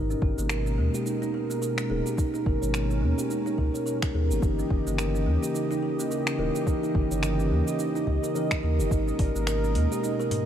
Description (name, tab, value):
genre	organic downtempo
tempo	107 BPM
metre	4/4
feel	swing 58% on 16ths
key	unclear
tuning	A4 = 441 Hz
part	mellow tine electric piano	accompaniment	0.0-10.5 s	Fb3 to Bb4	-35 LUFS	left 4 dB	phaser, sidechain pumping, ping-pong delay
part	warm analog pad	sustained chords	0.0-10.5 s	Cb3 to Eb5	-32 LUFS	right 1 dB	chorus, sidechain pumping
part	kalimba	arpeggios	0.0-10.5 s	Bb3 to Eb5	-29 LUFS	right 2 dB	ping-pong delay
part	round analog bass	bass	0.0-9.9 s	Eb1 to Eb2	-26 LUFS	equal	none
part	afro-pop drum kit	drums	0.1-10.4 s	finger snaps, hi-hat, shaker	-35 LUFS	equal	studio ambience
part	electronic kick drum	drums	0.2-9.3 s	none	-27 LUFS	equal	studio ambience
part	tabla	percussion	9.2-10.4 s	none	-37 LUFS	left 2 dB	none
room	light reverb, digital ambience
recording	dark, warm production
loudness	-24 LUFS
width	side -10 dB against mid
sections	0.0-10.5 A section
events	none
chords	0.0 Abmadd9; 4.4 Eb7b9; 8.9 Abmadd9